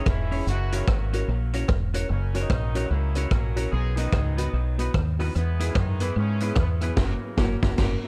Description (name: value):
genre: ska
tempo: 148 BPM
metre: 4/4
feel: swing 62% on 8ths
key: unclear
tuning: A4 = 440 Hz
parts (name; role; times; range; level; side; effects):
- clear horn section; melody; 0.0-8.1 s; C#3 to G#4; -38 LUFS; equal; tape echo
- semi-hollow electric guitar; accompaniment; 0.0-8.0 s; A#3 to C#5; -40 LUFS; equal; spring reverb
- dark upright piano; stabs; 0.0-8.0 s; A#3 to C#5; -36 LUFS; equal; tape echo
- deep dub fingered electric bass; bass; 0.1-8.0 s; E1 to G#2; -28 LUFS; equal; none
- vintage drum kit; drums; 0.1-7.9 s; crash cymbal, hi-hat, kick drum, rim click, snare drum; -29 LUFS; equal; tape echo
room: light reverb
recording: dark, warm production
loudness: -25 LUFS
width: mono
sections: 0.0-8.1 A section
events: band accent 7.0-8.1; drum fill 7.8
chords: 0.5 F#; 3.7 B; 5.3 E; 7.0 F#